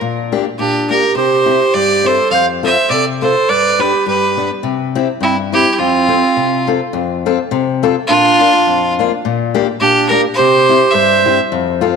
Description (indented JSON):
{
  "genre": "alpine folk, alpine dance band",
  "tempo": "104 BPM",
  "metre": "2/4",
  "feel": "swing 54% on 8ths",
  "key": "F major",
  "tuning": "A4 = 440 Hz",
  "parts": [
    { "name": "fingerpicked steel-string acoustic guitar", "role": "accompaniment", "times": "0.0-12.0 s", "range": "F2 to A4", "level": "-17 LUFS", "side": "left 9 dB", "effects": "none" },
    { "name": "bright fiddle", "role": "melody", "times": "0.6-11.4 s", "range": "E4 to F5", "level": "-14 LUFS", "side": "equal", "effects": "none" },
    { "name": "clear clarinet", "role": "second line", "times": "0.6-11.4 s", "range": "C4 to C5", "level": "-16 LUFS", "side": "right 8 dB", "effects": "none" }
  ],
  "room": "wet echo chamber reverb, RT60 2.1 s",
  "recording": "1960s-style stereo with parts hard left and right",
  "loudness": "-11 LUFS",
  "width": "side -6 dB against mid",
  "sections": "0.0-6.9 A section; 6.9-12.0 A section",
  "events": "none",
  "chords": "0.0 Gm/Bb; 1.2 C; 2.3 F; 3.5 G; 4.6 C; 5.8 F; 8.1 Bb; 9.2 Gm/Bb; 10.4 C",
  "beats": "| 0.02 0.60 | 1.17 1.75 | 2.33 2.90 | 3.48 4.06 | 4.63 5.21 | 5.78 6.36 | 6.94 7.51 | 8.09 8.66 | 9.23 9.81 | 10.38 10.95 | 11.53"
}